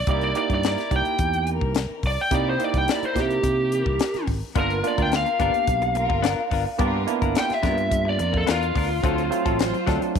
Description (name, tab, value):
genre	straight-eighth soul blues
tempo	107 BPM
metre	4/4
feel	straight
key	unclear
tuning	A4 = 439 Hz
part	lead guitar through a small cranked amp	melody	0.0-10.1 s	F4 to G5	-24 LUFS	left 1 dB	overdrive, slapback echo
part	fingered electric bass	bass	0.0-10.2 s	G1 to C3	-27 LUFS	equal	none
part	barky tine electric piano	accompaniment	0.1-10.2 s	F#3 to G4	-28 LUFS	right 15 dB	medium stereo tremolo
part	muted chamber string section	sustained chords	0.1-10.0 s	E3 to C5	-33 LUFS	left 2 dB	none
part	tight funk drum kit	drums	0.1-10.2 s	hi-hat, kick drum, snare drum	-26 LUFS	left 2 dB	none
part	direct-recorded clean electric guitar	stabs	4.6-10.1 s	F#3 to A#4	-30 LUFS	left 11 dB	spring reverb
room	light reverb, small room ambience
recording	1960s-style stereo with parts hard left and right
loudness	-20 LUFS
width	side -7 dB against mid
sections	0.0-10.2 A section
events	lead electric guitar solo 0.0-10.2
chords	0.1 C7#9; 4.6 G7#9; 9.0 D7#9